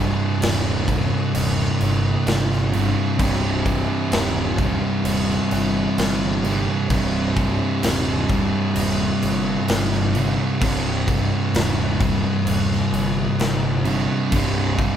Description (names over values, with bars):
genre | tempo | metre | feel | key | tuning
stoner and doom metal | 65 BPM | 4/4 | straight | C minor | A4 = 440 Hz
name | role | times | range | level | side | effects
thick fuzz guitar | riff | 0.0-15.0 s | C2 to C3 | -24 LUFS | left 6 dB | distortion
thick fuzz guitar | riff | 0.0-15.0 s | C2 to C3 | -22 LUFS | right 5 dB | distortion
fuzz picked electric bass | bass | 0.0-15.0 s | C1 to G1 | -26 LUFS | left 1 dB | overdrive
big rock drum kit | drums | 0.4-15.0 s | crash cymbal, kick drum, snare drum | -25 LUFS | equal | none
room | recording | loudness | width
light reverb | band playing live in one room | -18 LUFS | side -9 dB against mid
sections
0.0-15.0 A section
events
none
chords
0.0 Cm